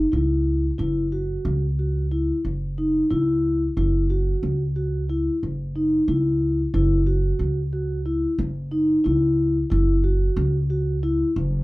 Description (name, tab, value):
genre	contemporary instrumental, chamber music in an uneven meter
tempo	182 BPM (eighths)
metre	9/8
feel	straight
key	unclear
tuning	A4 = 441 Hz
part	vibraphone with soft mallets	arpeggios	0.0-11.3 s	D#4 to F#4	-23 LUFS	left 1 dB	none
part	upright bass	bass	0.0-11.6 s	F#1 to C#2	-23 LUFS	equal	none
room	light reverb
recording	dark, warm production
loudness	-20 LUFS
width	side -20 dB against mid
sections	0.0-11.6 A section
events	none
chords	0.0 F#5